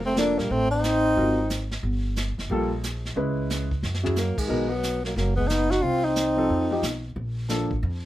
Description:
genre	jazz, small-group swing and bop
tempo	180 BPM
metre	4/4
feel	swing 64% on 8ths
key	unclear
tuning	A4 = 440 Hz
part	mellow tenor saxophone	melody	0.0-1.7, 4.2-7.0 s	Ab3 to F#4	-25 LUFS	left 2 dB	none
part	growling trombone	second line	0.0-1.7, 4.2-7.0 s	Eb3 to D#4	-29 LUFS	right 5 dB	none
part	upright bass	bass	0.0-8.1 s	F1 to Gb2	-28 LUFS	equal	none
part	warm grand piano	accompaniment	0.2-7.7 s	F3 to Cb5	-27 LUFS	left 1 dB	none
part	vintage brush drum kit	drums	0.2-8.1 s	brushed snare drum, crash cymbal, hi-hat, kick drum, snare drum, toms	-32 LUFS	right 1 dB	none
room	light reverb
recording	none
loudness	-22 LUFS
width	side -14 dB against mid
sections	0.0-8.1 A section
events	drum fill 3.8-4.2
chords	0.0 Bbmaj7; 0.5 Adim; 1.2 Ab13; 1.8 Gm9; 3.2 Dbm7; 3.8 Gb5; 4.5 Bmaj7; 5.8 Cm; 6.5 F7; 7.2 Bbmaj7

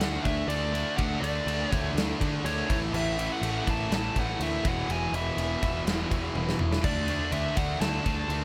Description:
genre	hard rock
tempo	123 BPM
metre	4/4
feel	straight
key	unclear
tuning	A4 = 440 Hz
part	dark smooth lead guitar	melody	0.0-8.4 s	C#5 to A5	-35 LUFS	equal	overdrive, digital delay
part	overdriven semi-hollow guitar	riff	0.0-8.4 s	E2 to D4	-36 LUFS	equal	none
part	overdriven semi-hollow guitar	riff	0.0-8.4 s	E2 to D4	-40 LUFS	equal	none
part	scooped high-gain guitar	riff	0.0-8.4 s	E2 to D4	-39 LUFS	equal	distortion
part	fuzz picked electric bass	bass	0.0-8.4 s	E1 to D3	-35 LUFS	equal	overdrive
part	huge arena drum kit	drums	0.0-8.4 s	crash cymbal, kick drum, ride cymbal, snare drum, toms	-33 LUFS	equal	none
room	small room ambience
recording	none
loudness	-28 LUFS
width	mono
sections	0.0-8.4 A section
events	drum fill 6.4-6.8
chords	0.0 D5; 2.7 A5; 4.6 E5; 6.8 D5

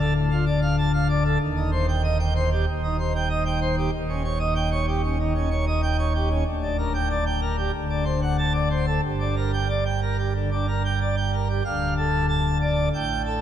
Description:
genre	classical, organ toccata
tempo	94 BPM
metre	4/4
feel	straight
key	G minor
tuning	A4 = 441 Hz
part	pipe organ, plenum	solo	0.0-13.4 s	D1 to A5	-21 LUFS	equal	none
room	wet cathedral reverb, RT60 4.6 s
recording	none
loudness	-21 LUFS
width	side -10 dB against mid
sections	0.0-11.7 A section; 11.7-13.4 B section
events	none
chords	0.0 Dm; 1.4 Cm/Eb; 3.9 Eb7; 6.5 Gm/D; 7.7 D7; 9.0 Gm; 11.7 Dm

